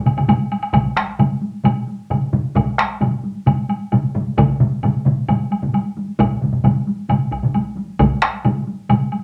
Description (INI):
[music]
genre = japanese traditional, taiko drum ensemble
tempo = 132 BPM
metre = 4/4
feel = straight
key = none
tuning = none
[part]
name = taiko ensemble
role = percussion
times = 0.1-9.2 s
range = none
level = -24 LUFS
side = equal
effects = none
[part]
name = taiko ensemble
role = percussion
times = 0.1-9.0 s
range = none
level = -24 LUFS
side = equal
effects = none
[part]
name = taiko ensemble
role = percussion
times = 0.1-9.0 s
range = none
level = -22 LUFS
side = equal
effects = none
[part]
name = woodblock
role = percussion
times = 0.1-9.2 s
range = none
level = -28 LUFS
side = equal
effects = none
[part]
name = taiko ensemble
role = percussion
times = 0.7-8.1 s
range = none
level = -24 LUFS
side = equal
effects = none
[sound]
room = wet club reverb, RT60 0.6 s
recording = none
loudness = -19 LUFS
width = mono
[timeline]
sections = 0.7-9.2 A section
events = none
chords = none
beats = 0.29 | 0.74 1.20 1.65 2.11 | 2.56 3.02 3.47 3.92 | 4.38 4.83 5.29 5.74 | 6.19 6.64 7.09 7.55 | 8.00 8.45 8.90